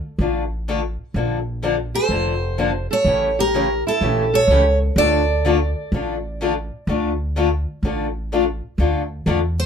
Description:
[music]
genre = acoustic string swing (jazz manouche)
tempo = 126 BPM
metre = 4/4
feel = swing 64% on 8ths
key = D minor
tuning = A4 = 441 Hz
[part]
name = picked steel-string acoustic guitar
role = accompaniment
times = 0.2-9.4 s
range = C#3 to A4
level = -21 LUFS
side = left 4 dB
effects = none
[part]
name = upright bass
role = bass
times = 0.2-9.7 s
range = F1 to E2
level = -22 LUFS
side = equal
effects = none
[part]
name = nylon-string guitar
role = second line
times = 1.9-8.3 s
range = E4 to A4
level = -24 LUFS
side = equal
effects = none
[part]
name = picked steel-string acoustic guitar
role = melody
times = 2.0-9.7 s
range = A4 to D5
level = -20 LUFS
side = right 2 dB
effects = none
[sound]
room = light reverb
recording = minimal, uncompressed stereo recording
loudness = -18 LUFS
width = side -7 dB against mid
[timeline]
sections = 0.0-8.8 A section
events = none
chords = 0.0 Dm; 1.2 Bbmaj7; 3.1 A7b9; 5.0 Dm

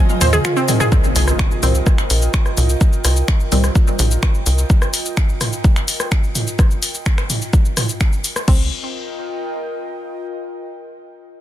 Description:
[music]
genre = melodic techno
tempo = 127 BPM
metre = 4/4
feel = straight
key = C minor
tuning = A4 = 444 Hz
[part]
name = dark chamber string section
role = sustained chords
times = 0.0-0.9 s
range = C4 to Eb5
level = -34 LUFS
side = equal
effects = none
[part]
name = filtered dub chord stab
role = stabs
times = 0.0-4.9 s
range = Eb3 to C4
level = -26 LUFS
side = left 1 dB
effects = phaser, sidechain pumping, tape echo
[part]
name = airy breathy pad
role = texture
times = 0.0-10.3 s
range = F4 to Ab5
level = -27 LUFS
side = right 2 dB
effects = chorus, sidechain pumping
[part]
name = punchy analog drum machine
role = drums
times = 0.1-8.6 s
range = crash cymbal, finger snaps, hi-hat, rim click, shaker, toms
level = -21 LUFS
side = equal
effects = sidechain pumping on perc, sidechain pumping on hats, soft clipping on snare, sidechain pumping on toms, sidechain pumping on cymbals
[part]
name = wide unison pluck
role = arpeggios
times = 0.2-0.9, 8.5-8.7 s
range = C4 to C5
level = -22 LUFS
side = right 1 dB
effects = sidechain pumping, tape echo
[part]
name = tight sequencer bass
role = bass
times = 0.2-4.6, 8.5-8.7 s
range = Bb1 to Eb2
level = -16 LUFS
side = equal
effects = sidechain pumping
[part]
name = electronic kick drum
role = drums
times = 0.9-8.6 s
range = none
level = -14 LUFS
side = equal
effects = overdrive
[part]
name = impact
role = sound effects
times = 1.0-2.8 s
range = none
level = -26 LUFS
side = equal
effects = none
[sound]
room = digital ambience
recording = dense, heavily limited modern master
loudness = -14 LUFS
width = side -13 dB against mid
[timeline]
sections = 0.9-8.5 A section; 8.5-10.4 B section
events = drum fill 0.0-0.9; break 0.4-0.9; fade-out on analog synth pad 0.9-8.5; impact 0.9-2.8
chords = 0.0 Fm; 0.9 Cm

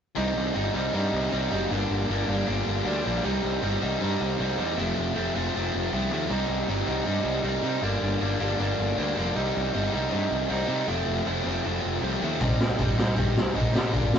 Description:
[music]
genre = punk rock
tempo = 157 BPM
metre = 4/4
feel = straight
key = unclear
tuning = A4 = 441 Hz
[part]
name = biting overdriven guitar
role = riff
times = 0.2-14.2 s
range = F2 to Eb4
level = -26 LUFS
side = equal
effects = none
[part]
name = fuzz picked electric bass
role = bass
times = 0.2-14.2 s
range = F1 to C3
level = -29 LUFS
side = equal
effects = overdrive
[part]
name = raw garage drum kit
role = drums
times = 12.4-14.2 s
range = hi-hat, kick drum, snare drum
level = -23 LUFS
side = equal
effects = none
[sound]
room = moderate booth ambience, RT60 0.2 s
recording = rough rehearsal-room recording, tube saturation, nothing above 7.6 kHz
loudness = -24 LUFS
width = side -8 dB against mid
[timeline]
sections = 0.2-14.2 A section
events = none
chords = 0.2 Cm; 1.7 Gm; 3.2 Cm; 4.8 F; 6.3 Cm; 7.8 Gm; 9.3 Cm; 10.9 F; 12.4 Cm

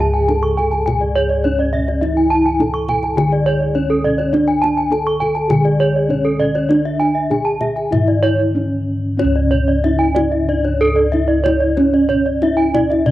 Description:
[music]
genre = Balinese gamelan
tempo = 93-104 BPM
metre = 4/4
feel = straight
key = C# pelog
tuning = A4 = 441 Hz
[part]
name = gamelan-type bronze metallophone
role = melody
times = 0.0-13.1 s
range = C#4 to A4-20c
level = -19 LUFS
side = equal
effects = cassette tape
[part]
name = gamelan-type bronze metallophone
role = accompaniment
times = 0.0-9.2 s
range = D3+20c to G#3-30c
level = -32 LUFS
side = right 1 dB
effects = none
[part]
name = gamelan-type bronze metallophone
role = arpeggios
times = 0.0-12.9 s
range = A4-20c to C#6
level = -20 LUFS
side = right 3 dB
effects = none
[part]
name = gamelan-type bossed gongs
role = bass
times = 0.0-13.1 s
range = C#2 to G#4-30c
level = -18 LUFS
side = equal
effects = none
[part]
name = kendang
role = percussion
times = 0.0-13.1 s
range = none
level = -26 LUFS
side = left 2 dB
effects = none
[part]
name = gamelan-type bronze metallophone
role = arpeggios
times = 0.1-13.1 s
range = C#5 to A5-20c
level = -23 LUFS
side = left 4 dB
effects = none
[sound]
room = light reverb, small room ambience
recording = home recording on cassette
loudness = -14 LUFS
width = side -15 dB against mid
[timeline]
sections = 0.0-9.2 A section; 9.2-13.1 B section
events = none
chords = none

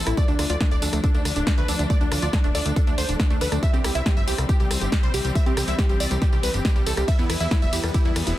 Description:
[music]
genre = uplifting trance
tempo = 139 BPM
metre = 4/4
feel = straight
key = unclear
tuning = A4 = 440 Hz
[part]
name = wide unison pluck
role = melody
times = 0.0-8.4 s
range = D4 to E5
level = -29 LUFS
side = equal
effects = cassette tape, sidechain pumping, dub echo
[part]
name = plucky unison lead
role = second line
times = 0.0-8.4 s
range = D4 to E5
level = -34 LUFS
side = equal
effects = sidechain pumping, ping-pong delay
[part]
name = dark studio string section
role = sustained chords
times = 0.0-8.4 s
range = E3 to D4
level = -32 LUFS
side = left 3 dB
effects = sidechain pumping
[part]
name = analog pluck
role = arpeggios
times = 0.0-8.1 s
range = G3 to A4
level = -34 LUFS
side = right 3 dB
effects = chorus, sidechain pumping, ping-pong delay
[part]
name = plucky analog bass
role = bass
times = 0.0-8.3 s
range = D1 to E2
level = -26 LUFS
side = equal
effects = sidechain pumping
[part]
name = punchy analog drum machine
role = drums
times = 0.1-8.4 s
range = hi-hat, ride cymbal, rim click, snare drum, tambourine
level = -28 LUFS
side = equal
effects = sidechain pumping on hats, sidechain pumping on perc, sidechain pumping on cymbals
[part]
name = electronic kick drum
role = drums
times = 0.2-8.0 s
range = none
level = -21 LUFS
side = equal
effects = none
[sound]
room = little or no reverb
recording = dense, heavily limited modern master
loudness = -19 LUFS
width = side -14 dB against mid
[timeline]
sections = 0.0-8.4 A section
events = none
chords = 0.2 Dm; 3.6 C; 7.1 Em

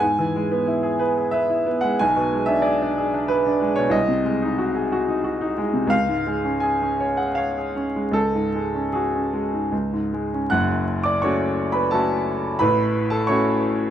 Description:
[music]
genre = classical, romantic character piece for solo piano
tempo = 74-95 BPM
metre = 3/4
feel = rubato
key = F# minor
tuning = A4 = 440 Hz
[part]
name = bright grand piano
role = solo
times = 0.0-13.9 s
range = F#1 to F#6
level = -19 LUFS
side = equal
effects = none
[sound]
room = moderate recital hall reverb, RT60 1.4 s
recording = close, detailed microphones, vinyl crackle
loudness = -19 LUFS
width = side -10 dB against mid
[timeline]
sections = 0.0-10.5 A section; 10.5-13.9 B section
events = none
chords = 0.0 E/G#; 2.0 G#dim/B; 3.9 G#7/B#; 5.9 C#; 8.2 C#sus4; 9.7 C#5; 10.5 F#m; 12.6 F#m/A

